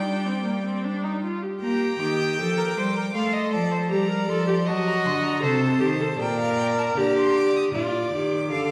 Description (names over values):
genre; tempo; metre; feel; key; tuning
classical, baroque-style fugue for string quartet; 78 BPM; 4/4; straight; G minor; A4 = 440 Hz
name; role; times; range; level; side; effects
rich violin; melody; 0.0-8.7 s; F5 to Eb6; -35 LUFS; equal; none
rich violin; second line; 0.0-8.7 s; C5 to G5; -31 LUFS; equal; none
rich viola; accompaniment; 0.0-8.7 s; Bb3 to C5; -28 LUFS; equal; none
rich cello; bass; 0.0-8.7 s; Bb2 to Bb3; -28 LUFS; equal; none
room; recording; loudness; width
wet recital hall reverb, RT60 1.6 s; heard from further back in the room, vinyl crackle; -24 LUFS; mono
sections
0.0-1.6 A section; 1.6-7.7 B section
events
none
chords
0.0 G5; 1.6 Gm; 3.1 Am7; 4.7 F#dim7; 6.2 Gm/Bb